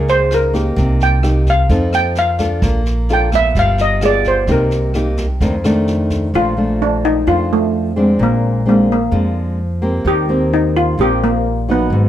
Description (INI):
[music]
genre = bossa nova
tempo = 129 BPM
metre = 4/4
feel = straight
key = Bb major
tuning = A4 = 437 Hz
[part]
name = steel pan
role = melody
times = 0.0-12.1 s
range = A3 to G5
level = -16 LUFS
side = equal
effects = none
[part]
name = nylon-string guitar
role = accompaniment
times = 0.0-12.1 s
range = F2 to A4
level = -18 LUFS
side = left 1 dB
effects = none
[part]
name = upright bass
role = bass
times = 0.0-12.1 s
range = G1 to F2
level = -18 LUFS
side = right 1 dB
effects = none
[part]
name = jazz brush drum kit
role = drums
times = 0.1-6.2 s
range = kick drum, rim click, snare drum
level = -24 LUFS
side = right 1 dB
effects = none
[sound]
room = moderate studio reverb, RT60 0.7 s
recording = none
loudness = -13 LUFS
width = side -11 dB against mid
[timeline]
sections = 0.0-6.3 A section; 6.3-12.1 B section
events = steel pan solo 0.0-6.3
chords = 0.0 Gb69 (rootless); 0.8 Cm7; 1.7 F7; 2.6 Bbmaj7; 3.5 G7b9; 4.5 Cm7; 5.4 F6; 6.3 Bbmaj7; 8.2 Bb9; 10.1 Eb6